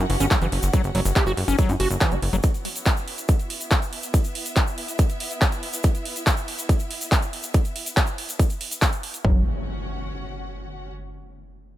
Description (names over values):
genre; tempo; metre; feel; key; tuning
psychedelic trance; 141 BPM; 4/4; straight; unclear; A4 = 443 Hz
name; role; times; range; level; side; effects
overdriven acid bass; riff; 0.0-2.4, 9.2-9.4 s; E3 to G4; -27 LUFS; equal; auto-pan, sidechain pumping, tape echo
plucky analog bass; bass; 0.0-2.4, 9.2-9.4 s; F#1 to F#2; -24 LUFS; equal; none
bright studio string section; texture; 0.0-10.9 s; B3 to F#5; -36 LUFS; equal; sidechain pumping
big-room dance drum kit; drums; 0.1-9.2 s; handclaps, hi-hat; -27 LUFS; equal; none
egg shaker; percussion; 0.2-9.2 s; none; -34 LUFS; left 2 dB; none
big-room dance drum kit; drums; 0.3-9.3 s; kick drum, toms; -20 LUFS; equal; none
impact; sound effects; 9.3-10.9 s; none; -33 LUFS; equal; none
room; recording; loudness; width
little or no reverb; none; -20 LUFS; side -14 dB against mid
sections
0.0-9.2 A section; 9.2-10.9 B section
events
fade-out on string section 0.0-9.2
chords
0.0 F#5; 2.4 E5; 9.2 F#5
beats
0.31 | 0.73 1.16 1.59 2.01 | 2.44 2.86 3.29 3.71 | 4.14 4.57 4.99 5.42 | 5.84 6.27 6.69 7.12 | 7.54 7.97 8.39 8.82 | 9.25 9.67 10.10 10.52